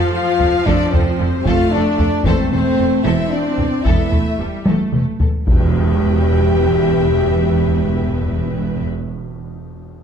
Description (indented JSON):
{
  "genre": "cinematic, epic orchestral film score",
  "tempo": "75 BPM (dotted quarters)",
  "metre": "12/8",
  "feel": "straight",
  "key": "E phrygian",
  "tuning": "A4 = 441 Hz",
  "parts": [
    { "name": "rich symphonic violin section", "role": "melody", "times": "0.0-8.9 s", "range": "A4 to E5", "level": "-30 LUFS", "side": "left 4 dB", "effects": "none" },
    { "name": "clear symphonic violin section", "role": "second line", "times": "0.0-8.8 s", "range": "C5 to G5", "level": "-29 LUFS", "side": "left 2 dB", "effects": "none" },
    { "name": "clear symphonic viola section", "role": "accompaniment", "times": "0.0-8.9 s", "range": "F3 to B4", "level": "-24 LUFS", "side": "right 1 dB", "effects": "none" },
    { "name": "warm French horn section", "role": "sustained chords", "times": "0.0-8.8 s", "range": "C4 to G4", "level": "-19 LUFS", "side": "left 4 dB", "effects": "none" },
    { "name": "rich symphonic cello section", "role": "bass", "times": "0.4-8.8 s", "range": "E2 to F2", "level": "-23 LUFS", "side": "right 3 dB", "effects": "none" },
    { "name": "rich symphonic double bass section", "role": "bass", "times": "0.4-8.8 s", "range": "E1 to F1", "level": "-21 LUFS", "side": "right 4 dB", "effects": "none" },
    { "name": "taiko ensemble", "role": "drums", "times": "0.4-6.5 s", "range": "none", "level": "-18 LUFS", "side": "left 1 dB", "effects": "none" },
    { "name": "timpani", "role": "percussion", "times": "2.2-8.9 s", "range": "E2", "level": "-23 LUFS", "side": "equal", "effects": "none" },
    { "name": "tam-tam", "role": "percussion", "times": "5.5-7.6 s", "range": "none", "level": "-29 LUFS", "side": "left 2 dB", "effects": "none" }
  ],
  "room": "moderate scoring stage reverb, RT60 1.4 s",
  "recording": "dark, warm production",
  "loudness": "-14 LUFS",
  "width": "side -7 dB against mid",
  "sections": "0.0-5.5 A section; 5.5-8.7 B section",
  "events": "drum fill 4.7-5.5; band accent 5.5-6.0",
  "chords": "0.0 F; 2.3 Am/E; 5.5 Em"
}